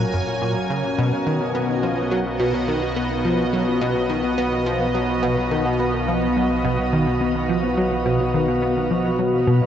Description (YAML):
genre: ambient, sequencer-driven space music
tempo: 106 BPM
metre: 4/4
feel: straight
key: unclear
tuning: A4 = 440 Hz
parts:
  - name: sweeping resonant pad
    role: sustained chords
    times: 0.0-9.7 s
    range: B2 to G#5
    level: -21 LUFS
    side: equal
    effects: chorus
  - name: tight sequenced synth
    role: riff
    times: 0.0-9.6 s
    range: F#2 to B3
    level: -22 LUFS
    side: equal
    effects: chorus, phaser, tape echo
  - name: fat analog bass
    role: bass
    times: 0.0-9.7 s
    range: F#1 to B1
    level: -33 LUFS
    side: equal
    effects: none
  - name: wind-like tuned noise texture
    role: texture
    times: 0.0-9.7 s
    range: E#5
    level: -36 LUFS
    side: equal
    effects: none
room: wet shimmer reverb, RT60 8.7 s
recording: worn, warbling old tape, cassette tape, warbly pitch drift, nothing above 7.9 kHz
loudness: -19 LUFS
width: side -9 dB against mid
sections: 0.0-9.7 A section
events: none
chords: 0.0 F#; 1.0 B